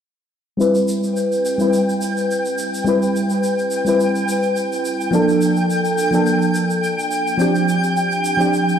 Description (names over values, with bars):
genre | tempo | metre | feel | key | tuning
sunset chillout | 106 BPM | 4/4 | swing 54% on 16ths | C major | A4 = 445 Hz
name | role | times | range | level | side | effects
mellow FM electric piano | accompaniment | 0.6-8.8 s | F3 to B4 | -17 LUFS | equal | chorus, auto-pan, low-pass filter, tape echo
shaker | drums | 0.6-8.8 s | none | -33 LUFS | right 2 dB | none
twinkling granular texture | texture | 1.2-8.8 s | G5 | -23 LUFS | equal | built-in reverb
room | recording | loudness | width
wet concert hall reverb, RT60 2.3 s | played on a big sound system in a bare room, large studio reverb | -16 LUFS | side -8 dB against mid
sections
0.6-8.8 A section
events
filter sweep on FM electric piano 0.6-8.8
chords
0.6 Cmaj7; 5.1 Bbmaj7; 7.4 G7sus4